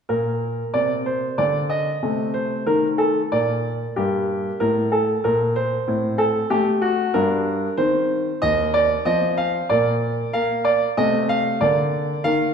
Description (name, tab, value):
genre	classical-period piano sonatina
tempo	94 BPM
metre	3/4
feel	straight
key	Bb major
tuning	A4 = 439 Hz
part	bright concert grand piano	solo	0.1-12.5 s	Eb2 to F5	-18 LUFS	equal	none
room	wet recital hall reverb, RT60 1.6 s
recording	recorded in a church or concert hall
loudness	-18 LUFS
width	side -6 dB against mid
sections	0.1-12.5 A section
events	none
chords	0.1 Bb; 2.0 Adim/C; 3.3 N.C.; 4.0 Gm; 5.9 Am7; 7.2 Gm; 7.8 Cm/Eb; 9.1 F5; 9.7 N.C.; 11.0 F7/C; 11.6 Bb/D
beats	| 0.09 0.74 1.38 | 2.02 2.67 3.32 | 3.97 4.61 5.25 | 5.89 6.52 7.15 | 7.79 8.42 9.06 | 9.70 10.33 10.97 | 11.62 12.26